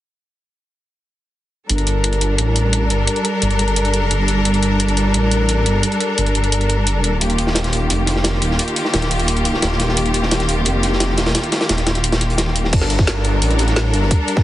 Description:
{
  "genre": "dark technical drum and bass",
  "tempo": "174 BPM",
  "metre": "4/4",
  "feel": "straight",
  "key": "G minor",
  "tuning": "A4 = 440 Hz",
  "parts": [
    { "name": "clear symphonic string section", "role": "sustained chords", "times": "1.7-14.4 s", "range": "Eb3 to Bb4", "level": "-19 LUFS", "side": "equal", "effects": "sidechain pumping" },
    { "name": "wide detuned saw bass", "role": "bass", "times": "1.7-14.1 s", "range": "Eb1 to A1", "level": "-18 LUFS", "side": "equal", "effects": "chorus, overdrive, sidechain pumping" },
    { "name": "drum and bass drum kit", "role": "drums", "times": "1.7-14.3 s", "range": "crash cymbal, hi-hat, snare drum", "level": "-22 LUFS", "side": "left 1 dB", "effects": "none" },
    { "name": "crunchy breakbeat drum kit", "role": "drums", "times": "7.2-14.4 s", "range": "hi-hat, snare drum", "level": "-22 LUFS", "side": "equal", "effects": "high-pass filter on hats, high-pass filter on snare, high-pass filter on room" },
    { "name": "electronic kick drum", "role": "drums", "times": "12.7-14.4 s", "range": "none", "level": "-15 LUFS", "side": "equal", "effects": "none" }
  ],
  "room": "moderate lush hall reverb, RT60 1.8 s, studio reverb",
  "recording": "heavily compressed radio sound, multiband compression, nothing above 10.8 kHz",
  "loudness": "-15 LUFS",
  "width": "side -14 dB against mid",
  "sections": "1.7-12.7 A section; 12.7-14.4 B section",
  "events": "none",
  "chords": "1.7 Gm; 7.2 Eb; 12.7 Gm"
}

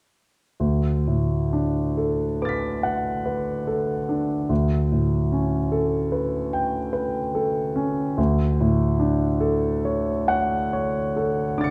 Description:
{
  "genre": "classical, impressionist solo piano",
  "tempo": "43-50 BPM (dotted quarters)",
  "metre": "9/8",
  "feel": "rubato",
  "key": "D major",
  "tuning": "A4 = 441 Hz",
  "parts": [
    { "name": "clear concert grand piano", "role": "solo", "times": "0.6-11.7 s", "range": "D2 to C#7", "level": "-23 LUFS", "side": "equal", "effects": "none" }
  ],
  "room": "moderate recital hall reverb, RT60 1.7 s",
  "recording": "dark, warm production",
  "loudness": "-23 LUFS",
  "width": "mono",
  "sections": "0.6-11.7 A section",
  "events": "none",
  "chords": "0.6 D6; 4.5 A9/D; 8.2 Dmaj7"
}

